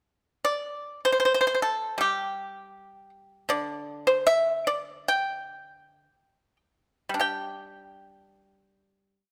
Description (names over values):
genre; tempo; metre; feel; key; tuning
chinese traditional, Chinese solo plucked strings; 48-80 BPM; 2/4; rubato; G zhi mode; A4 = 440 Hz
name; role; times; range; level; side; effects
pipa; solo; 0.4-9.3 s; D3 to G5; -26 LUFS; equal; none
room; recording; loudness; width
moderate recital hall reverb, RT60 1.5 s; none; -27 LUFS; mono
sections
0.4-7.2 A section; 7.2-9.3 final chord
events
slowing down 3.5-7.2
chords
none